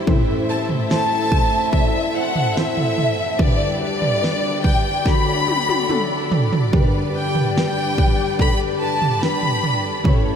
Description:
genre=pop ballad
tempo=72 BPM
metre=4/4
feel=straight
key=G major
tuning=A4 = 440 Hz
part: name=felt-muted upright piano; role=accompaniment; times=0.0-10.4 s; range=G1 to D5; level=-25 LUFS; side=left 3 dB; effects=ensemble chorus
part: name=bright studio string section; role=sustained chords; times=0.0-10.4 s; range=D3 to E5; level=-29 LUFS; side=equal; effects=none
part: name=flamenco guitar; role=arpeggios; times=0.0-10.4 s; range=A2 to C#5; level=-29 LUFS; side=right 5 dB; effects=wide subtle chorus
part: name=mellow French horn section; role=second line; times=0.1-10.4 s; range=F#3 to A4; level=-30 LUFS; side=left 4 dB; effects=none
part: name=pop drum kit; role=drums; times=0.1-10.2 s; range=kick drum, snare drum, toms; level=-20 LUFS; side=right 1 dB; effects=none
part: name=warm studio violin section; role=melody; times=0.5-10.1 s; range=D5 to B5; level=-22 LUFS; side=left 1 dB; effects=analog delay
room=moderate huge ambient reverb, RT60 7.5 s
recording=dreamy mix soaked in reverb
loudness=-16 LUFS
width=side -8 dB against mid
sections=0.0-10.4 A section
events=drum fill 5.1-6.7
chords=0.1 Am; 3.4 G/D; 5.1 D; 6.7 G

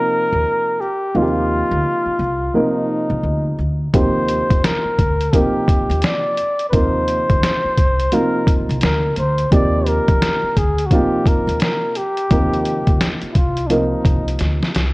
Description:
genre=hip hop, jazz-hop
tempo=86 BPM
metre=4/4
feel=swing 62% on 16ths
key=Eb major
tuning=A4 = 440 Hz
part: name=breathy flugelhorn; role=melody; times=0.0-14.4 s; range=D4 to D5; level=-20 LUFS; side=left 1 dB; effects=none
part: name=dark upright piano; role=accompaniment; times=0.0-14.7 s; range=C3 to Bb4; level=-20 LUFS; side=right 1 dB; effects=none
part: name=upright bass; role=bass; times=0.3-14.9 s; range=C2 to F2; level=-21 LUFS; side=equal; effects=none
part: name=trip hop sampler-style drum kit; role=drums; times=3.9-14.9 s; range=hi-hat, kick drum, snare drum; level=-18 LUFS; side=equal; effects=none
room=light reverb, studio ambience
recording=worn, warbling old tape, cassette tape, warbly pitch drift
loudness=-15 LUFS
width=side -23 dB against mid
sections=0.0-14.9 A section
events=drum fill 14.4-14.9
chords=0.0 Ebmaj9

